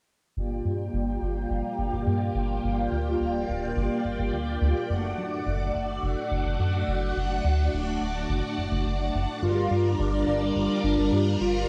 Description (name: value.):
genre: synthwave.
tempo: 106 BPM.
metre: 4/4.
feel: straight.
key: G minor.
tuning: A4 = 444 Hz.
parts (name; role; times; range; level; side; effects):
string machine, full ensemble; sustained chords; 0.4-11.7 s; G3 to G5; -30 LUFS; equal; phaser, ensemble chorus, cassette tape, plate reverb.
chorused synth bass; bass; 0.4-11.6 s; D1 to G2; -30 LUFS; equal; none.
unison lead; melody; 9.4-11.7 s; D4 to F4; -28 LUFS; equal; cassette tape, tape echo.
room: moderate booth ambience, RT60 0.2 s.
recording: home recording on cassette.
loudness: -27 LUFS.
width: mono.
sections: 0.4-9.4 A section; 9.4-11.7 B section.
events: filter sweep on string machine 0.4-9.4.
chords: 0.4 Gm7; 4.9 D/F#; 9.4 Gm7.